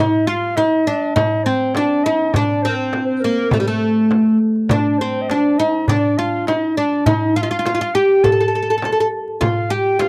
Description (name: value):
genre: Arabic maqam ensemble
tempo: 102 BPM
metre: 4/4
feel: straight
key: D maqam bayati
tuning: A4 = 438 Hz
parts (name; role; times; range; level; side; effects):
- oud; melody; 0.0-10.1 s; G3 to A4; -18 LUFS; equal; none
- warm clarinet; second line; 0.0-10.1 s; A4 to A5; -26 LUFS; equal; none
- darbuka; percussion; 0.6-10.1 s; none; -26 LUFS; equal; none
- frame drum; percussion; 0.6-10.1 s; none; -26 LUFS; equal; none
room: light reverb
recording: dry, close 1970s-style studio recording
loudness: -17 LUFS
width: mono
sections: 0.0-10.1 A section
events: none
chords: none